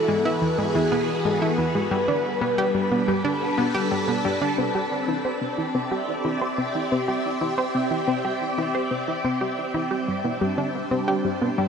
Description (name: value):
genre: ambient, sequencer-driven space music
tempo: 90 BPM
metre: 4/4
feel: straight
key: C major from 4.6 s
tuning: A4 = 435 Hz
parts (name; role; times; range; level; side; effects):
- pulse-width lead; melody; 0.0-3.9 s; G#4 to B4; -27 LUFS; equal; chorus, vintage 12-bit sampler grit, analog delay
- phased string machine; sustained chords; 0.0-11.7 s; E3 to E5; -25 LUFS; equal; ensemble chorus, phaser
- analog pluck; riff; 0.1-11.7 s; E3 to C5; -25 LUFS; equal; chorus, analog delay
room: wet shimmer reverb, RT60 7.8 s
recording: none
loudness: -22 LUFS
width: side -6 dB against mid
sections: 0.0-4.6 A section; 4.6-11.7 B section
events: filter sweep on synth arpeggio sound 0.0-4.6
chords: 0.0 E; 1.9 G; 4.6 C; 9.9 Gsus4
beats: 0.58 1.25 | 1.92 2.58 3.25 3.92 | 4.58 5.25 5.92 6.58 | 7.25 7.92 8.58 9.25 | 9.91 10.58 11.25